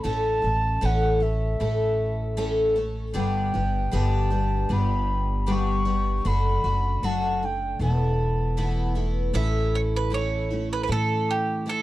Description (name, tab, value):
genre	acoustic folk duo or small band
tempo	78 BPM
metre	4/4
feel	straight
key	A mixolydian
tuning	A4 = 438 Hz
part	baroque flute	melody	0.0-8.9 s	E5 to C#6	-29 LUFS	equal	none
part	picked twelve-string acoustic guitar	accompaniment	0.0-11.8 s	E2 to A4	-27 LUFS	left 2 dB	none
part	upright bass	bass	0.0-11.8 s	E1 to A2	-25 LUFS	equal	none
part	bowl-back mandolin	second line	9.3-11.8 s	G4 to E5	-27 LUFS	right 4 dB	none
room	little or no reverb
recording	dry, close 1970s-style studio recording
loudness	-22 LUFS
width	side -16 dB against mid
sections	0.0-9.4 A section; 9.4-11.8 B section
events	mandolin solo 9.4-11.8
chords	0.0 A; 3.2 G; 6.3 D/F#; 7.8 Esus4; 9.4 A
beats	| 0.05 0.83 1.61 2.38 | 3.16 3.93 4.71 5.48 | 6.26 7.03 7.81 8.58 | 9.35 10.13 10.90 11.67